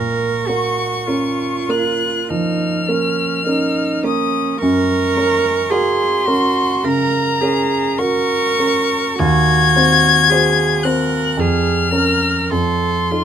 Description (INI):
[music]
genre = classical, slow romantic movement for piano trio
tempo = 47-56 BPM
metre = 4/4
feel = rubato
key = Bb minor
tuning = A4 = 437 Hz
[part]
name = warm violin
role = melody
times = 0.0-13.2 s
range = Bb5 to Ab6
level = -18 LUFS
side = left 6 dB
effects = none
[part]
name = warm cello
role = second line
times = 0.0-13.2 s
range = Db4 to Bb4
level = -20 LUFS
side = right 5 dB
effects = none
[part]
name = dark grand piano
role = accompaniment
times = 0.0-13.2 s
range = Eb2 to C5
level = -18 LUFS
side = right 1 dB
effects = none
[sound]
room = little or no reverb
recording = close, detailed microphones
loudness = -14 LUFS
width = side -9 dB against mid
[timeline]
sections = 0.0-13.2 A section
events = none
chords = 0.0 Bbm; 4.6 Gb; 9.2 Cdim/Eb; 11.4 Bbm/F; 12.5 F7